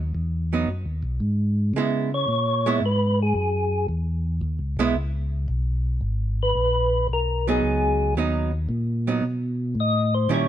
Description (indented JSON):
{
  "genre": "soul jazz organ trio",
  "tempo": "112 BPM",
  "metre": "4/4",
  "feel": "swing 69% on 8ths",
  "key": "G# minor",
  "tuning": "A4 = 440 Hz",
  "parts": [
    { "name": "mellow tonewheel organ", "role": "bass", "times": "0.0-10.5 s", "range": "G#1 to C#3", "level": "-24 LUFS", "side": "equal", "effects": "overdrive, chorus vibrato, slow rotary speaker" },
    { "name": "archtop guitar, miked and amplified", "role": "accompaniment", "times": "0.5-10.5 s", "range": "D#3 to E4", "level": "-24 LUFS", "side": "right 6 dB", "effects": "none" },
    { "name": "percussive tonewheel organ", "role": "melody", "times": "2.1-10.5 s", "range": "G#4 to D#5", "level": "-23 LUFS", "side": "left 1 dB", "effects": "slow rotary speaker" }
  ],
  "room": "light reverb",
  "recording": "band playing live in one room",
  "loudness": "-21 LUFS",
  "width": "side -11 dB against mid",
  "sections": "0.0-10.5 A section",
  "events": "tonewheel organ solo 0.0-10.5",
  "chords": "0.0 G#m7; 1.8 C#m7; 6.0 G#m7",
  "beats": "0.15 0.68 1.22 | 1.75 2.29 2.82 3.36 | 3.89 4.43 4.96 5.50 | 6.03 6.57 7.10 7.63 | 8.17 8.70 9.24 9.77 | 10.31"
}